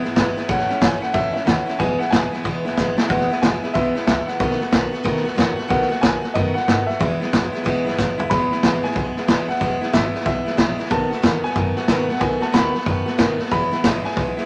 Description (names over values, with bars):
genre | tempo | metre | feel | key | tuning
rockabilly | 184 BPM | 4/4 | swing 64% on 8ths | E major | A4 = 443 Hz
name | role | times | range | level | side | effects
picked steel-string acoustic guitar | accompaniment | 0.0-14.5 s | E2 to F#4 | -25 LUFS | equal | none
upright bass | bass | 0.0-14.4 s | E1 to B2 | -31 LUFS | equal | none
vintage drum kit | drums | 0.0-14.4 s | hi-hat, kick drum, snare drum, toms | -23 LUFS | equal | none
warm upright piano | melody | 0.5-14.5 s | D#5 to B5 | -27 LUFS | equal | none
room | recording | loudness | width
moderate studio ambience, RT60 0.5 s | none | -20 LUFS | mono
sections
0.0-8.3 A section; 8.3-14.5 B section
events
drum fill 2.8-3.1, 8.0-8.3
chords
0.5 A; 1.8 E; 4.4 B7; 7.0 E; 10.9 B7; 13.5 E